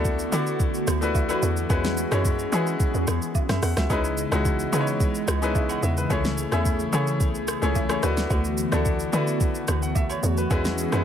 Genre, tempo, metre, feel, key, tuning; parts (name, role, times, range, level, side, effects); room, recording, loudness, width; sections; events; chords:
amapiano; 109 BPM; 4/4; straight; A4 = 444 Hz
bright grand piano; accompaniment; 0.0-11.0 s; G#3 to F#5; -27 LUFS; left 3 dB
hollow soft pad; sustained chords; 0.0-11.0 s; C#3 to D#5; -29 LUFS; equal; ensemble chorus, sidechain pumping
hollow log drum bass; bass; 0.0-11.0 s; C#2 to E3; -26 LUFS; right 1 dB
smooth R&B drum kit; drums; 0.0-11.0 s; hi-hat, kick drum, rim click, shaker, snare drum; -26 LUFS; equal
agogo bells and woodblock; percussion; 0.3-11.0 s; -37 LUFS; right 10 dB
little or no reverb; -21 LUFS; side -9 dB against mid
0.0-11.0 A section
0.0 D69; 1.7 E69; 3.9 C#m9; 6.1 Amaj7/C#; 8.0 D69; 10.5 E69